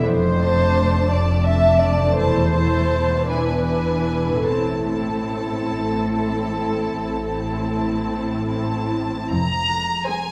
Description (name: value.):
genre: classical, slow romantic movement for symphony orchestra.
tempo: 46-58 BPM (dotted quarters).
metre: 12/8.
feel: rubato.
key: A minor.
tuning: A4 = 440 Hz.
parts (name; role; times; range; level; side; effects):
rich chamber violin section; melody; 0.0-10.3 s; G#5 to Bb5; -31 LUFS; equal; none.
dark studio viola section; accompaniment; 0.0-10.3 s; Ab3 to E4; -29 LUFS; equal; none.
concert harp; arpeggios; 0.0-10.3 s; E2 to D5; -30 LUFS; equal; none.
dark chamber violin section; second line; 0.1-10.3 s; Ab4 to E5; -26 LUFS; equal; none.
warm chamber cello section; bass; 0.1-10.2 s; E2 to A2; -26 LUFS; equal; none.
warm studio double bass section; bass; 0.1-10.2 s; E1 to A1; -29 LUFS; equal; none.
room: wet recital hall reverb, RT60 1.6 s.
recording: none.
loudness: -21 LUFS.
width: mono.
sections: 0.0-9.3 A section; 9.3-10.3 B section.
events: none.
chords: 0.1 Dm/F; 2.2 Am/E; 3.3 E7; 4.5 Am; 9.3 Fm.